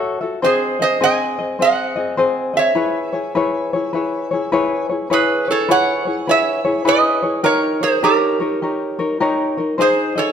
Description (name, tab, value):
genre	hawaiian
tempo	103 BPM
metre	4/4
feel	swing 64% on 8ths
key	C# minor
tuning	A4 = 440 Hz
part	tenor ukulele	accompaniment	0.0-10.3 s	B#3 to E5	-18 LUFS	left 3 dB	none
part	metal-body resonator slide guitar	melody	0.4-10.3 s	G4 to G#5	-17 LUFS	right 4 dB	none
room	moderate recital hall reverb, RT60 1.5 s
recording	close, detailed microphones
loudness	-15 LUFS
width	side -8 dB against mid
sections	0.0-5.1 A section; 5.1-10.3 A section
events	none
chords	0.4 G#; 2.8 C#m7; 7.4 D#7; 9.8 G#